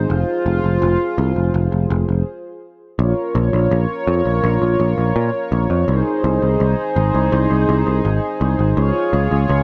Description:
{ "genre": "synthwave", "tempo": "83 BPM", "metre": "4/4", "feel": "straight", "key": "Bb minor", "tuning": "A4 = 441 Hz", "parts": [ { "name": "chorused pulse-width pad", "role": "sustained chords", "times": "0.0-9.6 s", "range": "Eb4 to Db5", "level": "-22 LUFS", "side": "equal", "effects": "none" }, { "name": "picked electric bass", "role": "bass", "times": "0.0-9.6 s", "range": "F1 to Bb2", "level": "-19 LUFS", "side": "equal", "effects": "none" } ], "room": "light reverb, digital ambience", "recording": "none", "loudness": "-18 LUFS", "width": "mono", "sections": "0.0-3.0 A section; 3.0-9.6 B section", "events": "stop 2.3-3.0", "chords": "0.1 Fm; 3.0 Bbm; 5.9 Ab; 8.8 Db" }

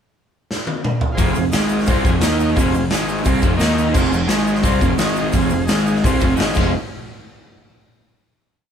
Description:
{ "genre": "garage rock duo or trio", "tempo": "172 BPM", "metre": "4/4", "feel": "straight", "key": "F minor", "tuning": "A4 = 440 Hz", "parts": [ { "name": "raw garage drum kit", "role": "drums", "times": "0.5-6.7 s", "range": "crash cymbal, hi-hat, kick drum, snare drum, toms", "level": "-20 LUFS", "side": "equal", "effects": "none" }, { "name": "overdriven combo organ", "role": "sustained chords", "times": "1.1-6.7 s", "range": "Eb4 to Eb5", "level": "-26 LUFS", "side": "left 1 dB", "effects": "none" }, { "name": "crunchy overdriven guitar", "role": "riff", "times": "1.2-6.7 s", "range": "F2 to F4", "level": "-18 LUFS", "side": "right 1 dB", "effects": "none" }, { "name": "fuzz picked electric bass", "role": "bass", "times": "1.2-6.7 s", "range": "F1 to Eb2", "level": "-22 LUFS", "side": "equal", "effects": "overdrive" }, { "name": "tube shaker", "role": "percussion", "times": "1.2-6.7 s", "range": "none", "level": "-36 LUFS", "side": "right 7 dB", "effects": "none" } ], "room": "light reverb", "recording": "band playing live in one room", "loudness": "-15 LUFS", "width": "side -8 dB against mid", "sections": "0.0-1.2 pickup bar; 1.2-6.7 riff; 6.7-8.2 final hit", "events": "drum fill 0.5-1.2", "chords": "0.0 N.C.; 1.2 Fm; 1.5 Ab5; 1.9 Fm; 2.2 Eb5; 2.6 Fm; 2.9 Ab5; 3.2 Fm; 3.6 Eb5; 3.9 Fm; 4.3 Ab5; 4.6 Fm; 5.0 Ab5; 5.3 Fm; 5.7 Ab5; 6.0 Fm; 6.4 Ab5; 6.6 Fm; 6.7 N.C." }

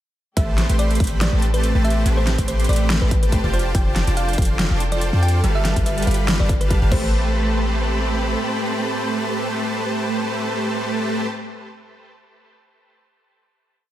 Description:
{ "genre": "future bass", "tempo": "142 BPM", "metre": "4/4", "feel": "swing 55% on 16ths, half-time", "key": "A minor", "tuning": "A4 = 441 Hz", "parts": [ { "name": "thumb-piano-like synth pluck", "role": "melody", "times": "0.4-11.4 s", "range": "B4 to G5", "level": "-29 LUFS", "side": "equal", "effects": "chorus, sidechain pumping, diffuse ambient delay" }, { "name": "warm studio string section", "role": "sustained chords", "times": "0.4-11.3 s", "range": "F3 to B5", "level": "-30 LUFS", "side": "equal", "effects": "sidechain pumping" }, { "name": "dense compressed supersaw", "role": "riff", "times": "0.4-11.3 s", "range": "G3 to C6", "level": "-23 LUFS", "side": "right 1 dB", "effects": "sidechain pumping, diffuse ambient delay" }, { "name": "warm 808-style bass", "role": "bass", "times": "0.4-8.4 s", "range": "F1 to F2", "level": "-20 LUFS", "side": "equal", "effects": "sidechain pumping" }, { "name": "big-room dance drum kit", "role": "drums", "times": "0.4-7.0 s", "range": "crash cymbal, hi-hat, snare drum", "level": "-26 LUFS", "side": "equal", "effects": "overdrive" }, { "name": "electronic kick drum", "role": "drums", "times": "0.4-7.0 s", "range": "none", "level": "-21 LUFS", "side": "equal", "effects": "overdrive" } ], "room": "moderate lush hall reverb, RT60 1.6 s", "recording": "dreamy mix soaked in reverb", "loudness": "-17 LUFS", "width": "side -13 dB against mid", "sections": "0.4-7.1 drop; 7.1-10.5 final hit", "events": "drop 0.4-7.1", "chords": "0.4 Am9; 3.5 F69; 5.4 G9; 6.9 Am9" }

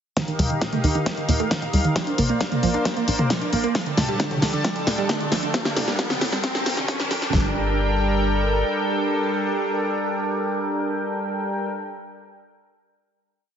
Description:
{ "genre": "uplifting trance", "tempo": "134 BPM", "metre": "4/4", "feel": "straight", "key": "G minor", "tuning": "A4 = 445 Hz", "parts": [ { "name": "filtered supersaw swell", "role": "sustained chords", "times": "0.2-11.7 s", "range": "D3 to A5", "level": "-25 LUFS", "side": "equal", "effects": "sidechain pumping" }, { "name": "wide unison pluck", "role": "arpeggios", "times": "0.2-7.5 s", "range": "A2 to D4", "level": "-26 LUFS", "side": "right 4 dB", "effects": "sidechain pumping, digital delay" }, { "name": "big-room dance drum kit", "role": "drums", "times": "0.2-7.4 s", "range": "kick drum, snare drum", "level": "-25 LUFS", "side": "left 1 dB", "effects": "high-pass filter on kick, high-pass filter on snare" }, { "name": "big-room dance drum kit", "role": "drums", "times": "0.2-7.3 s", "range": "hi-hat, snare drum, toms", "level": "-25 LUFS", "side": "left 1 dB", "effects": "sidechain pumping on hats, sidechain pumping on toms" }, { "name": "riser", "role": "sound effects", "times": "2.2-7.3 s", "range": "none", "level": "-32 LUFS", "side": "equal", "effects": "none" }, { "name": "tight sequencer bass", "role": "bass", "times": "0.4-8.6 s", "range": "G1 to Eb2", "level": "-24 LUFS", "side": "left 1 dB", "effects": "sidechain pumping" } ], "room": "moderate lush hall reverb, RT60 1.9 s", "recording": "heavily compressed radio sound, multiband compression, high-pass filter, nothing above 7.7 kHz", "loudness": "-20 LUFS", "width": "side -8 dB against mid", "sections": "0.2-7.3 build; 7.3-10.9 final chord", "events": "build-up 0.2-7.3; drum fill 0.2-7.3; filter sweep on synth pluck 0.2-7.3; filter sweep 0.2-7.3; riser 2.2-7.3", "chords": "0.2 Ebadd9; 2.0 Bbadd9; 3.8 Dsus4; 5.5 Gmadd9" }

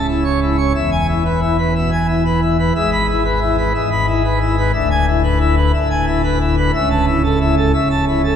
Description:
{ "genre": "classical, organ toccata", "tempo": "120 BPM", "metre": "4/4", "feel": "straight", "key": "unclear", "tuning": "A4 = 440 Hz", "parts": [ { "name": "pipe organ, plenum", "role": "solo", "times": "0.0-8.4 s", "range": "C#1 to B5", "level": "-14 LUFS", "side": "left 1 dB", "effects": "none" } ], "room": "wet church reverb, RT60 4.0 s", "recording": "minimal, uncompressed stereo recording", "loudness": "-14 LUFS", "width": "side -8 dB against mid", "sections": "0.0-8.4 A section", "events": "none", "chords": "0.0 A/C# (rootless); 0.8 E; 2.8 E/G#; 4.7 E7/D; 6.7 A/C#" }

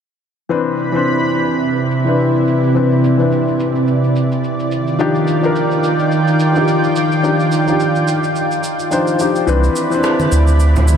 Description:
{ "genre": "sunset chillout", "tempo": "107 BPM", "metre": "4/4", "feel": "swing 56% on 16ths", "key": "C major", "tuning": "A4 = 440 Hz", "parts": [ { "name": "dark baby grand piano", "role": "accompaniment", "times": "0.5-11.0 s", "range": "E3 to C5", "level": "-17 LUFS", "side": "left 2 dB", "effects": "auto-pan, ping-pong delay" }, { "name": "lush unison pad", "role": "sustained chords", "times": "0.5-11.0 s", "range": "C3 to B5", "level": "-16 LUFS", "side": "right 1 dB", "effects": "chorus" }, { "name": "electronic cabasa and rim click", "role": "drums", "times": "0.5-11.0 s", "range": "none", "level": "-29 LUFS", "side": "right 1 dB", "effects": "low-pass filter on perc, low-pass filter on snare, low-pass filter on room" }, { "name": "warm sub bass", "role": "bass", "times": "9.5-11.0 s", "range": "C2 to D2", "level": "-11 LUFS", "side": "equal", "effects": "tube saturation" }, { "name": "congas", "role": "percussion", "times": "10.2-11.0 s", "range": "none", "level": "-21 LUFS", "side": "right 2 dB", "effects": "none" } ], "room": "wet huge ambient reverb, RT60 8.6 s", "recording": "dreamy mix soaked in reverb", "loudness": "-13 LUFS", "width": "side -8 dB against mid", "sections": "0.5-11.0 A section", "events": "none", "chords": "0.5 Cmaj9; 4.7 Ebmaj9; 9.5 Cmaj9" }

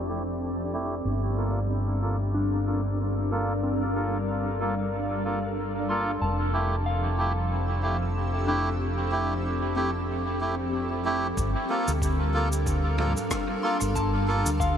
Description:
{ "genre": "ambient dub", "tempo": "93 BPM", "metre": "4/4", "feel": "swing 56% on 16ths", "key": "G dorian", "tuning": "A4 = 441 Hz", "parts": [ { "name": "granular cloud pad", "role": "sustained chords", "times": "0.0-14.8 s", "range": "F3 to E6", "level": "-31 LUFS", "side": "equal", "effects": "built-in reverb" }, { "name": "fingered electric bass", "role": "bass", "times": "0.0-14.8 s", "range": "F1 to D2", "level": "-28 LUFS", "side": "equal", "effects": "tube saturation" }, { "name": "bubbling stepped-filter texture", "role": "texture", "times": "0.0-11.4 s", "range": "D4 to D5", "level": "-39 LUFS", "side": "left 3 dB", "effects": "chorus, built-in reverb" }, { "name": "melodica", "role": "stabs", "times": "0.1-14.5 s", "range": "A3 to A4", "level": "-30 LUFS", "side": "right 1 dB", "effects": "dub echo" }, { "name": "soft synth bell", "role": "arpeggios", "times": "2.3-14.8 s", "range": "C4 to C6", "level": "-34 LUFS", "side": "left 3 dB", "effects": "chorus, vintage 12-bit sampler grit, tape echo" }, { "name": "electronic kick drum", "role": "drums", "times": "11.4-14.7 s", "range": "none", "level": "-32 LUFS", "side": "equal", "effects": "none" }, { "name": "vintage drum kit", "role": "drums", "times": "11.4-14.8 s", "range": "cabasa, rim click, toms", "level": "-35 LUFS", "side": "right 1 dB", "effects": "low-pass filter on toms, low-pass filter on snare, low-pass filter on perc, low-pass filter on room, dub echo" } ], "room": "light reverb, small room ambience", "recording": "low-pass filter", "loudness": "-24 LUFS", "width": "side -8 dB against mid", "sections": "0.0-11.4 A section; 11.4-14.8 B section", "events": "filter sweep 0.0-11.4", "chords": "0.0 Fmaj9; 1.1 Gm9; 6.2 Fmaj9; 11.4 Gm9" }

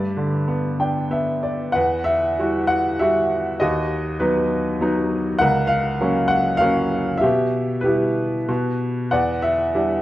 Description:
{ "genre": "classical, lyrical solo piano", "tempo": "91-102 BPM", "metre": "3/4", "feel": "rubato", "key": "unclear", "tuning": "A4 = 440 Hz", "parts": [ { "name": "clear baby grand piano", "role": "solo", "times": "0.0-10.0 s", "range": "C#2 to G5", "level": "-18 LUFS", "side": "equal", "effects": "none" } ], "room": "moderate recital hall reverb, RT60 1.4 s", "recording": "none", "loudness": "-18 LUFS", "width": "side -15 dB against mid", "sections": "0.0-1.8 A section; 1.8-10.0 B section", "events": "grand piano fill 0.5-1.8", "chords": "0.0 G; 1.8 Emadd9; 3.6 B/D#; 5.4 F#/C#; 7.2 Em/B; 8.5 G/B; 9.1 Em7" }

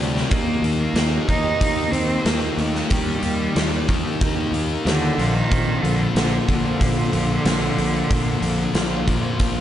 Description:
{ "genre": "quiet-loud alternative rock", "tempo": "92 BPM", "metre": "4/4", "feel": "straight", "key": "unclear", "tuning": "A4 = 440 Hz", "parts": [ { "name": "electric guitar through a small old amp", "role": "arpeggios", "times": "0.0-9.6 s", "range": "Bb2 to G4", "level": "-29 LUFS", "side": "right 4 dB", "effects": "lush chorus, slapback echo" }, { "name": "thick fuzz guitar", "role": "riff", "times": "0.0-9.6 s", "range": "Bb2 to Eb4", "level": "-24 LUFS", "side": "left 4 dB", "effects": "distortion, slapback echo" }, { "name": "fuzz fingered electric bass", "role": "bass", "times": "0.0-9.6 s", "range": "Bb1 to Eb2", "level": "-26 LUFS", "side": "right 1 dB", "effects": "overdrive" }, { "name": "big rock drum kit", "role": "drums", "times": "0.2-9.6 s", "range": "hi-hat, kick drum, snare drum", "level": "-24 LUFS", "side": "equal", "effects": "none" }, { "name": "rich cello", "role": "melody", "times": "0.3-9.6 s", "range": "D3 to Eb4", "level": "-24 LUFS", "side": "right 2 dB", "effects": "slapback echo" } ], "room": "light reverb, small room reverb", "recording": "nothing above 10.6 kHz", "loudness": "-18 LUFS", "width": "side -11 dB against mid", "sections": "0.0-9.6 A section", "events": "none", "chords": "0.3 Eb; 5.2 Bbadd9" }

